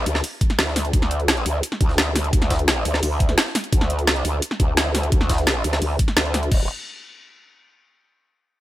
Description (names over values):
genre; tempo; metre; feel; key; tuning
dark technical drum and bass; 172 BPM; 4/4; straight; unclear; A4 = 440 Hz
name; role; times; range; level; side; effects
growl bass; bass; 0.0-6.7 s; D1 to D2; -22 LUFS; equal; chorus, tube saturation, sidechain pumping
drum and bass drum kit; drums; 0.1-6.6 s; crash cymbal, hi-hat, snare drum; -22 LUFS; equal; overdrive, small room ambience
jungle sampler-style drum kit; drums; 0.1-6.4 s; hi-hat, snare drum; -32 LUFS; equal; none
electronic kick drum; drums; 0.4-6.6 s; none; -19 LUFS; equal; small room ambience
room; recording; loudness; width
digital ambience; none; -18 LUFS; side -15 dB against mid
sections
0.0-6.5 A section; 6.5-7.9 B section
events
none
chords
none